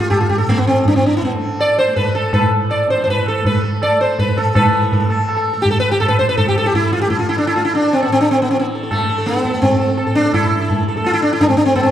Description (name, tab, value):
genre	indian classical, Hindustani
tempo	165 BPM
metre	4/4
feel	straight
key	A raga darbari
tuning	A4 = 440 Hz
part	sitar	melody	0.0-11.9 s	A3 to D5	-16 LUFS	equal	tape echo
part	tanpura	drone	0.0-11.9 s	A2 to A3	-25 LUFS	left 2 dB	none
part	tabla	percussion	0.1-11.9 s	none	-18 LUFS	right 1 dB	none
room	wet recital hall reverb, RT60 1.3 s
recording	dark, warm production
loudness	-13 LUFS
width	side -10 dB against mid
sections	0.0-4.6 A section; 4.6-11.9 B section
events	speeding up 0.0-11.9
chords	none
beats	| 0.10 0.47 0.85 1.22 | 1.59 1.97 2.34 2.71 | 3.08 3.45 3.82 4.18 | 4.55 4.92 5.29 5.65 | 6.01 6.38 6.74 7.11 | 7.47 7.83 8.19 8.55 | 8.91 9.27 9.63 9.99 | 10.35 10.70 11.06 11.41 | 11.77